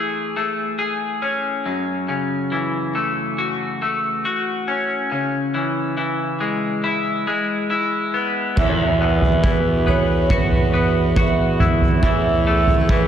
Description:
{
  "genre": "post-rock",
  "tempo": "69 BPM",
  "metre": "4/4",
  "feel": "straight",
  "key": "E major",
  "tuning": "A4 = 439 Hz",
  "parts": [
    { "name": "twelve-string electric guitar", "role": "arpeggios", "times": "0.0-13.1 s", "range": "E2 to G#4", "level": "-21 LUFS", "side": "left 2 dB", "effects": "tape echo, slapback echo" },
    { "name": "rich chamber string section", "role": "sustained chords", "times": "8.6-13.1 s", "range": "E3 to C#5", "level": "-28 LUFS", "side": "right 1 dB", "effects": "none" },
    { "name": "vibraphone with hard mallets", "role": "arpeggios", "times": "8.6-13.1 s", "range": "B4 to E5", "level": "-23 LUFS", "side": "right 6 dB", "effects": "tape echo, slapback echo" },
    { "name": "fuzz picked electric bass", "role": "bass", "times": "8.6-13.1 s", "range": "E2", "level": "-20 LUFS", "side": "equal", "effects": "overdrive" },
    { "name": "soft-mallet drum kit", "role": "drums", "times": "8.6-13.1 s", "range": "crash cymbal, kick drum, toms", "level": "-19 LUFS", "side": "right 1 dB", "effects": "none" }
  ],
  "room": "moderate concert hall reverb, RT60 2.3 s",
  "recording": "big arena sound",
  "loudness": "-17 LUFS",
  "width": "side -9 dB against mid",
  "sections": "0.0-8.6 A section; 8.6-13.1 A section",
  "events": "none",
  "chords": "0.0 Amaj7/E; 1.7 F#m7; 5.1 C#m7; 8.6 Esus2; 12.0 Amaj7/E"
}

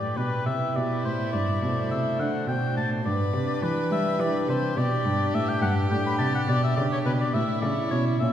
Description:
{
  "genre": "classical, baroque-style sonata movement with continuo",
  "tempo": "70 BPM (dotted quarters)",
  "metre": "6/8",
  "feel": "straight",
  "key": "G major",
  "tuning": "A4 = 442 Hz",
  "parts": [
    { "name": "clear oboe", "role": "melody", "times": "0.0-8.3 s", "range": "B4 to B5", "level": "-28 LUFS", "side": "left 3 dB", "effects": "none" },
    { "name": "pipe organ, foundations", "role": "accompaniment", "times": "0.0-8.3 s", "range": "G2 to C#5", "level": "-30 LUFS", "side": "left 1 dB", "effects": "none" },
    { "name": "rich cello", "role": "bass", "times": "0.0-8.3 s", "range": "G2 to G3", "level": "-26 LUFS", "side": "equal", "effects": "none" },
    { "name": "rich violin", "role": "second line", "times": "0.5-8.3 s", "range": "C#4 to B4", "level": "-32 LUFS", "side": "right 3 dB", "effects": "none" }
  ],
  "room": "wet concert hall reverb, RT60 2.2 s",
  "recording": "heard from further back in the room",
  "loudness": "-23 LUFS",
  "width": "side -10 dB against mid",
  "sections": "0.0-8.3 A section",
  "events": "none",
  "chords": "0.0 G; 1.3 D7/G; 3.1 G; 6.5 G/B; 7.4 A"
}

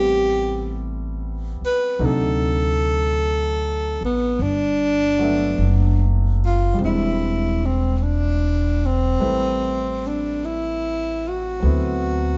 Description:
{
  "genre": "jazz ballad",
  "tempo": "50 BPM",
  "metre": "4/4",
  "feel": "swing 68% on 8ths",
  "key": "unclear",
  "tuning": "A4 = 438 Hz",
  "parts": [
    { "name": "breathy tenor saxophone", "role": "melody", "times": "0.0-12.4 s", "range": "B3 to B4", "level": "-24 LUFS", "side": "equal", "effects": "none" },
    { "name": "warm grand piano", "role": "accompaniment", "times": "0.0-12.4 s", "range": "C3 to E5", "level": "-29 LUFS", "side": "equal", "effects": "none" },
    { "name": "upright bass", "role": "bass", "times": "0.0-12.4 s", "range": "E1 to D2", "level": "-25 LUFS", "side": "equal", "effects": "none" }
  ],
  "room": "light reverb",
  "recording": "band playing live in one room, nothing above 7.7 kHz",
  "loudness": "-21 LUFS",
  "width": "mono",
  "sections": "0.0-12.4 A section",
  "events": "none",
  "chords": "0.0 Am9; 2.0 D7b9; 4.4 Gmaj13; 6.8 E7alt; 9.2 Am7; 11.6 D13"
}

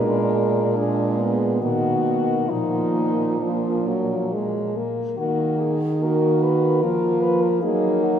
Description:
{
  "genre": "classical, lyrical piece for horn quartet",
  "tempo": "66-76 BPM",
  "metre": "3/4",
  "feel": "rubato",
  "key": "Eb minor",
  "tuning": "A4 = 441 Hz",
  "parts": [
    { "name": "warm French horn", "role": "melody", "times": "0.0-8.2 s", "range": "D4 to Cb5", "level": "-26 LUFS", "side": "left 4 dB", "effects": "none" },
    { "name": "mellow French horn", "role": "second line", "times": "0.0-8.2 s", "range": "A#3 to Gb4", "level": "-25 LUFS", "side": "right 4 dB", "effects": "none" },
    { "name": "mellow French horn", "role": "accompaniment", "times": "0.0-8.2 s", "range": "D#3 to Bb3", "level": "-24 LUFS", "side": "left 1 dB", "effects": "none" },
    { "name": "mellow French horn", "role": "bass", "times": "0.0-8.2 s", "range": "Bb2 to Gb3", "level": "-24 LUFS", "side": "right 2 dB", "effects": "none" }
  ],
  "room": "wet church reverb, RT60 2.9 s",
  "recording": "recorded in a church or concert hall",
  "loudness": "-19 LUFS",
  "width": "side -9 dB against mid",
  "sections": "0.0-5.2 A section; 5.2-8.2 A section",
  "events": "none",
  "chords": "0.0 Bb7; 1.6 Bmaj7; 2.5 Bb; 5.2 Ebm; 7.6 Ebm/Gb"
}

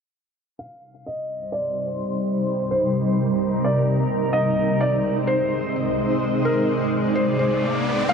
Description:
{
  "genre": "hip hop",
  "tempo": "128 BPM",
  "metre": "4/4",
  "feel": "half-time",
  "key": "C minor",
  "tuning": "A4 = 440 Hz",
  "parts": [
    { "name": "felt-muted upright piano", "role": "melody", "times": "0.6-8.1 s", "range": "Bb4 to F5", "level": "-25 LUFS", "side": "equal", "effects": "low-pass filter, ping-pong delay" },
    { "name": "granular cloud pad", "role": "sustained chords", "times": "1.5-8.1 s", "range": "C3 to D5", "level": "-21 LUFS", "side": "equal", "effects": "built-in reverb, low-pass filter" },
    { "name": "riser", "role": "sound effects", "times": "7.1-8.1 s", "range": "none", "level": "-29 LUFS", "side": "right 1 dB", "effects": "none" }
  ],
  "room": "moderate huge ambient reverb, RT60 7.7 s",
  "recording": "none",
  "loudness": "-20 LUFS",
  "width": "side -6 dB against mid",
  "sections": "0.6-8.1 A section",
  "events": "filter sweep 0.6-8.1; riser 7.1-8.1",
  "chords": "0.6 Cm; 4.3 Ab"
}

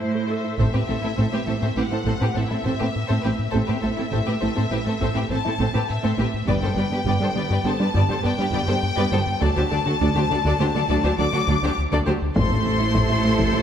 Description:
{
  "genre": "cinematic, hybrid orchestral and electronic film score",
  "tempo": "102 BPM",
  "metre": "5/4",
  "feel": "straight",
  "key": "A dorian",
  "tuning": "A4 = 440 Hz",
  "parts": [
    { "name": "clear studio violin section", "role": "melody", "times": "0.0-13.6 s", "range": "C5 to D6", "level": "-28 LUFS", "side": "left 4 dB", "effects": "none" },
    { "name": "rich symphonic viola section", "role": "accompaniment", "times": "0.0-13.6 s", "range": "F#3 to E5", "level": "-28 LUFS", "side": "equal", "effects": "none" },
    { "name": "tight sequenced synth", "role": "arpeggios", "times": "0.0-13.6 s", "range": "D3 to A4", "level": "-30 LUFS", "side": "right 3 dB", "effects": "chorus, digital delay" },
    { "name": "clear symphonic cello section", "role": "bass", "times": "0.0-13.6 s", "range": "D2 to A2", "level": "-28 LUFS", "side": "right 4 dB", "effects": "none" },
    { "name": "clear symphonic violin section", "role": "second line", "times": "0.6-13.6 s", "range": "E4 to D5", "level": "-29 LUFS", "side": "left 3 dB", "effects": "none" },
    { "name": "rubbery square bass", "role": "riff", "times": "0.6-13.6 s", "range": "D2 to A3", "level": "-25 LUFS", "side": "left 2 dB", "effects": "none" },
    { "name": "clear symphonic double bass section", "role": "bass", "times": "0.6-13.6 s", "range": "G1 to D2", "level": "-28 LUFS", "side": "right 3 dB", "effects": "none" },
    { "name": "solo taiko drums", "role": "drums", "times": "0.6-1.7, 6.5-7.6, 12.4-13.6 s", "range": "none", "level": "-26 LUFS", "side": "equal", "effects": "none" }
  ],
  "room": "wet scoring stage reverb, RT60 1.6 s",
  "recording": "none",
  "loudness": "-19 LUFS",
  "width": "side -9 dB against mid",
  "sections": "0.6-13.6 A section",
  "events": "none",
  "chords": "0.0 Am; 6.5 G; 9.4 D; 12.4 Am"
}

